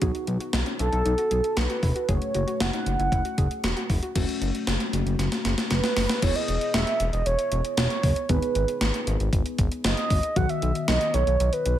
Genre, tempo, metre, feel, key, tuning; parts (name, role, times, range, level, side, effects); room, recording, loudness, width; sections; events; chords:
synth-pop; 116 BPM; 4/4; straight; E major; A4 = 440 Hz
muted felt-like synth keys; accompaniment; 0.0-11.8 s; D#3 to G#4; -32 LUFS; left 4 dB; chorus, phaser
soft round pluck; arpeggios; 0.0-4.1 s; C#4 to G#4; -36 LUFS; left 4 dB; chorus, ping-pong delay
smooth gliding synth bass; bass; 0.0-11.8 s; E1 to B1; -26 LUFS; equal
gated 80s digital drum machine; drums; 0.0-11.8 s; crash cymbal, hi-hat, kick drum, snare drum; -26 LUFS; equal; gated reverb, gated reverb snare
mellow horn-like synth lead; melody; 0.8-11.8 s; A4 to F#5; -27 LUFS; right 3 dB; chorus, ping-pong delay
light reverb; -22 LUFS; side -12 dB against mid
0.0-4.2 A section; 4.2-6.2 B section; 6.2-11.8 C section
drum fill 5.2-6.2
0.0 B; 2.1 F#madd9; 4.2 F#m; 6.2 E; 8.3 G#m; 10.4 B